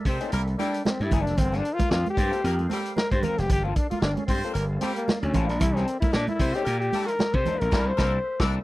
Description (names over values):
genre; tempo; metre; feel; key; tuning
funk; 114 BPM; 4/4; swing 56% on 16ths; G dorian; A4 = 439 Hz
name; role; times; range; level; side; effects
percussive tonewheel organ; sustained chords; 0.0-8.6 s; A4 to F5; -41 LUFS; right 1 dB; chorus vibrato, slow rotary speaker
clear horn section; second line; 0.1-8.5 s; G3 to D5; -33 LUFS; equal; none
gritty slap bass; bass; 0.1-8.6 s; F1 to C3; -26 LUFS; equal; overdrive
vintage drum kit; drums; 0.1-8.5 s; crash cymbal, hi-hat, kick drum, snare drum; -27 LUFS; equal; none
semi-hollow electric guitar; accompaniment; 0.2-8.6 s; Bb3 to Bb4; -34 LUFS; left 6 dB; wah, lush chorus
congas; percussion; 0.3-7.6 s; none; -32 LUFS; right 5 dB; none
brilliant trombone; melody; 0.6-8.4 s; Bb3 to C5; -28 LUFS; left 2 dB; none
room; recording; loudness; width
little or no reverb; dry, close 1970s-style studio recording; -22 LUFS; side -18 dB against mid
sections
0.0-8.6 A section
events
trombone solo 0.0-8.6; band accent 7.7-8.6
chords
0.0 C13; 1.4 Gm11; 5.6 C13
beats
0.33 0.85 | 1.38 1.91 2.44 2.97 | 3.50 4.03 4.55 5.08 | 5.61 6.14 6.67 7.20 | 7.72 8.25